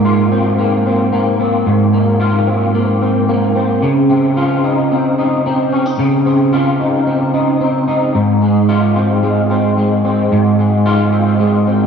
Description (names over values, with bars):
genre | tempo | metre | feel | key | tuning
dream pop | 111 BPM | 4/4 | straight | unclear | A4 = 440 Hz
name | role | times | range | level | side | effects
electric guitar at the edge of break-up | solo | 0.0-11.9 s | Ab2 to F4 | -11 LUFS | equal | ensemble chorus, ping-pong delay
room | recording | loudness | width
moderate lush hall reverb, RT60 2.8 s | none | -11 LUFS | side -6 dB against mid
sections
0.0-11.9 A section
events
none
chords
0.0 Ab69; 3.8 Dbmaj9; 8.2 Ab6